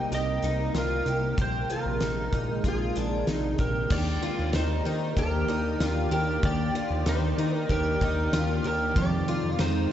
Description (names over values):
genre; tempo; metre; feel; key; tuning
dream pop; 95 BPM; 4/4; straight; Eb major; A4 = 440 Hz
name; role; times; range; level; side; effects
electric slide guitar; melody; 0.0-9.9 s; Ab4 to Eb5; -31 LUFS; right 2 dB; tape echo
soft string machine; sustained chords; 0.0-9.9 s; C3 to D5; -32 LUFS; equal; ensemble chorus
picked twelve-string acoustic guitar; arpeggios; 0.0-9.9 s; D4 to G4; -32 LUFS; left 2 dB; analog chorus, tape echo
fat analog bass; bass; 0.0-9.9 s; Bb1 to Eb3; -30 LUFS; equal; none
loose indie drum kit; drums; 0.1-9.7 s; crash cymbal, hi-hat, kick drum, ride cymbal, snare drum, tambourine; -31 LUFS; equal; none
mellow electric guitar; accompaniment; 3.9-9.9 s; F2 to G4; -33 LUFS; right 2 dB; tremolo, wide subtle chorus
room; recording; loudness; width
light reverb; played on a big sound system in a bare room, stone room reverb, nothing above 7.9 kHz; -24 LUFS; side -10 dB against mid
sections
0.0-3.9 A section; 3.9-9.9 B section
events
none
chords
0.0 Cm7; 1.4 Bb9sus4; 3.9 Ebmaj7; 9.0 Fm7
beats
0.12 0.75 | 1.38 2.01 2.64 3.28 | 3.91 4.54 5.17 5.80 | 6.43 7.07 7.70 8.33 | 8.96 9.59